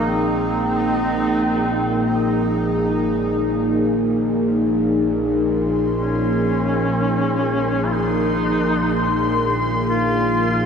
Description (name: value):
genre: dark ambient drone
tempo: free time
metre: none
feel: none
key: Bb minor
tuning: A4 = 435 Hz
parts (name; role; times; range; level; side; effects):
- warm duduk; melody; 0.0-10.7 s; C4 to F4; -24 LUFS; equal; analog delay
- deep dark ambient pad; sustained chords; 0.0-10.7 s; Bb3 to Bb4; -20 LUFS; equal; chorus, built-in reverb
- bowed-like drone; drone; 0.0-10.7 s; Bb1 to Bb2; -24 LUFS; equal; built-in reverb
- bubbling stepped-filter texture; texture; 0.0-10.7 s; Eb4 to C6; -28 LUFS; left 2 dB; chorus, built-in reverb
room: wet lush hall reverb, RT60 2.8 s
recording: dreamy mix soaked in reverb, cassette tape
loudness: -17 LUFS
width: side -6 dB against mid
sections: 0.0-10.7 A section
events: none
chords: 0.0 Bbsus2